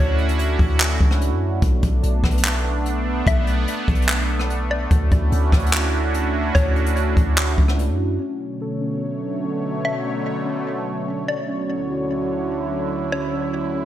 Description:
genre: hip hop, atmospheric cloud-rap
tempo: 146 BPM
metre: 4/4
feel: half-time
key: B minor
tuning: A4 = 441 Hz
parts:
  - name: mallet-like synth pluck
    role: melody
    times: 0.0-0.4, 3.3-6.9, 9.8-13.5 s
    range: C#5 to E5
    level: -28 LUFS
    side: left 2 dB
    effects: chorus, low-pass filter, digital delay
  - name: sweeping resonant pad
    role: sustained chords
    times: 0.0-13.8 s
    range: D2 to C#5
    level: -24 LUFS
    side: right 2 dB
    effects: chorus, sidechain pumping
  - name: warm 808-style bass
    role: bass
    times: 0.0-8.2 s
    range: B1 to F#2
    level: -20 LUFS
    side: equal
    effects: none
  - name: jazz brush drum kit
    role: drums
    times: 0.2-7.9 s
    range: handclaps, hi-hat, kick drum, rim click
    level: -20 LUFS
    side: equal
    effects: gated reverb
  - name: muted felt-like synth keys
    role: arpeggios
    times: 8.2-13.8 s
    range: C#4 to A4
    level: -28 LUFS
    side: left 2 dB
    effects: chorus, low-pass filter, digital delay
room: light reverb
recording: bright 1980s-style digital production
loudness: -18 LUFS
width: side -12 dB against mid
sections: 0.0-8.2 A section; 8.2-13.8 B section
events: none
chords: 0.0 Dmaj9; 1.6 Bm7; 4.9 Dmaj9; 8.2 Bm9; 11.5 Dmaj9

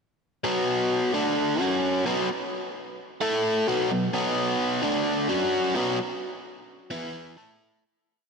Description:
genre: rock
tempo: 130 BPM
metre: 4/4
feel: straight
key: unclear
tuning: A4 = 440 Hz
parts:
  - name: biting overdriven guitar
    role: solo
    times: 0.4-7.8 s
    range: B2 to A4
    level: -24 LUFS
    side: equal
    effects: slapback echo
room: wet lush hall reverb, RT60 2.8 s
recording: big arena sound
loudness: -23 LUFS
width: side -5 dB against mid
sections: 0.4-7.8 riff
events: fade-out 6.0-7.8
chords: 0.4 B5; 1.1 D5; 1.6 F#5; 2.0 B5; 3.2 A5; 3.7 B5; 4.8 D5; 5.3 F#5; 5.7 B5; 6.9 E5; 7.4 A5

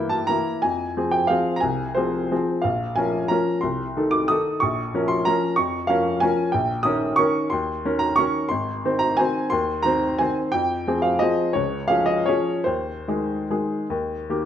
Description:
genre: classical, piano waltz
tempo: 141-199 BPM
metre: 3/4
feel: rubato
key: Ab major from 6.5 s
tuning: A4 = 440 Hz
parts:
  - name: clear upright piano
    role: solo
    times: 0.0-14.5 s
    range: Ab1 to Eb6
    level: -20 LUFS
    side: equal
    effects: none
room: moderate recital hall reverb, RT60 1.3 s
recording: close, detailed microphones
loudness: -20 LUFS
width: side -10 dB against mid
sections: 0.0-14.5 A section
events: none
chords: 0.0 Edim/G; 0.6 Fm; 2.6 Bbm; 3.6 Adim/C; 4.6 Bbm; 6.5 Eb7/Bb; 8.5 Ab; 10.5 Fm; 11.6 Db; 12.7 Ab/Eb; 13.9 Eb

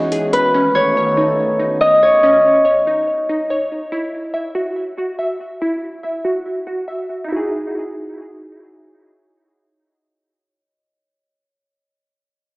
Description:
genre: hip hop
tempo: 142 BPM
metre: 4/4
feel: half-time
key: E major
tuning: A4 = 440 Hz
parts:
  - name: Celtic harp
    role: melody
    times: 0.0-3.9 s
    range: B4 to D#5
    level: -13 LUFS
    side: equal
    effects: low-pass filter, tape echo
  - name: airy breathy pad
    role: sustained chords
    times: 0.0-2.2 s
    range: D#3 to F#4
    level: -24 LUFS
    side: equal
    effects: chorus, low-pass filter
  - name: glassy wavetable pluck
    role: arpeggios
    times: 0.0-11.8 s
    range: G#3 to E5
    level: -22 LUFS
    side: equal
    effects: chorus, low-pass filter, tape echo
room: wet lush hall reverb, RT60 1.7 s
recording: dreamy mix soaked in reverb, small speaker sound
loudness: -15 LUFS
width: side -25 dB against mid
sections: 0.0-7.3 A section; 7.3-10.7 B section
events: filter sweep 0.0-7.3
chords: 0.0 Emaj9; 0.5 B9; 3.9 Esus2; 7.3 Emaj9

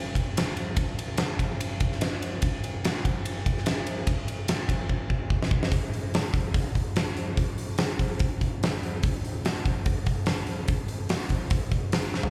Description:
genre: rock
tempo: 145 BPM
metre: 4/4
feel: straight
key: none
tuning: none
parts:
  - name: huge arena drum kit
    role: drums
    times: 0.2-12.3 s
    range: hi-hat, kick drum, ride cymbal, snare drum, toms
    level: -28 LUFS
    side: equal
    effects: none
room: light reverb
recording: live gig heard through the venue's PA, club reverb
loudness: -28 LUFS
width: mono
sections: 0.0-5.7 A section; 5.7-12.3 B section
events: drum fill 4.9-5.7, 12.1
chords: none

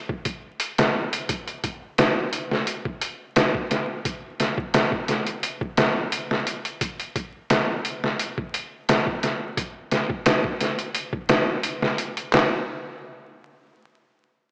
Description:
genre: trip hop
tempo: 87 BPM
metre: 4/4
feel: straight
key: none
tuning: none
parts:
  - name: trip hop sampler-style drum kit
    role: drums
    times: 0.1-12.5 s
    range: handclaps, hi-hat, kick drum, snare drum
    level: -24 LUFS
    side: equal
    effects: none
room: wet echo chamber reverb, RT60 2.3 s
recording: worn, warbling old tape, cassette tape, vinyl crackle, warbly pitch drift, small speaker sound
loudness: -25 LUFS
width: mono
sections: 0.0-1.3 A section; 1.3-12.3 B section; 12.3-14.5 C section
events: none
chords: none

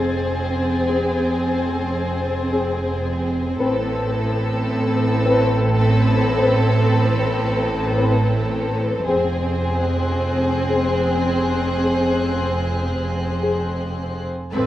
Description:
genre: cinematic, suspense film score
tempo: 110 BPM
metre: 5/4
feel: straight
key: unclear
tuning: A4 = 440 Hz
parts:
  - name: warm studio violin section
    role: melody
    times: 0.0-14.7 s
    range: B4 to C5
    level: -27 LUFS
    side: left 2 dB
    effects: none
  - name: rich studio violin section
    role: second line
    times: 0.0-14.3 s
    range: Ab4 to A4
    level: -27 LUFS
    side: left 1 dB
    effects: none
  - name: warm studio viola section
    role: accompaniment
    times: 0.0-14.7 s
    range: C4 to A4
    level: -24 LUFS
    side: equal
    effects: none
  - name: dark studio double bass section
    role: bass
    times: 0.0-14.7 s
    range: F1 to A1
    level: -24 LUFS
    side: right 1 dB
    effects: none
  - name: warm studio cello section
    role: bass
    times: 0.0-14.7 s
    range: F2 to A2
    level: -24 LUFS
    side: right 1 dB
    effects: none
  - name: warm studio violin section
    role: texture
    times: 0.0-14.7 s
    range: A5 to A6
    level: -34 LUFS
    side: left 3 dB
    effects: none
  - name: mellow French horn section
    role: sustained chords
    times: 0.9-13.6 s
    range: C4 to B4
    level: -23 LUFS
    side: left 3 dB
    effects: none
room: moderate scoring stage reverb, RT60 1.4 s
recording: worn, warbling old tape, cassette tape, warbly pitch drift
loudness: -18 LUFS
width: side -13 dB against mid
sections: 0.0-14.5 A section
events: none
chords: 0.0 Fm; 3.6 Amadd9; 9.1 Fm

